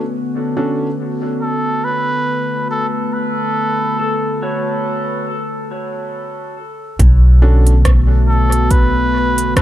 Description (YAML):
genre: ambient dub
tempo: 70 BPM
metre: 4/4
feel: swing 57% on 16ths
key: B minor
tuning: A4 = 440 Hz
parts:
  - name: warbly tape-like pad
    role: sustained chords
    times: 0.0-9.6 s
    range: D3 to B4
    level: -21 LUFS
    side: left 1 dB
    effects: chorus, built-in reverb
  - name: warm upright piano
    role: stabs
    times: 0.6-0.9, 7.4-7.7 s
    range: C#4 to A4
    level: -24 LUFS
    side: right 1 dB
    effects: dub echo
  - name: trumpet with cup mute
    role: melody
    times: 1.4-9.6 s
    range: A4 to B4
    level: -21 LUFS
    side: right 1 dB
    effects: analog delay
  - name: pedal steel guitar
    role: arpeggios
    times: 4.0-5.3 s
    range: F#4 to C#5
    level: -27 LUFS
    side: left 1 dB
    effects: low-pass filter, analog delay
  - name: upright bass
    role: bass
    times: 7.0-9.6 s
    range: B1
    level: -11 LUFS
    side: equal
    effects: none
  - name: electronic kick drum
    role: drums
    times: 7.0-9.6 s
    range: none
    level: -14 LUFS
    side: equal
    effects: none
  - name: organic electronic drum kit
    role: drums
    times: 7.0-9.6 s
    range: hi-hat, rim click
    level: -23 LUFS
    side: right 1 dB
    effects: overdrive, dub echo
room: light reverb, small room ambience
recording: echo-heavy mix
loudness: -13 LUFS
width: side -13 dB against mid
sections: 0.0-7.0 A section; 7.0-9.6 B section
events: break 5.3-7.0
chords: 0.0 Bm7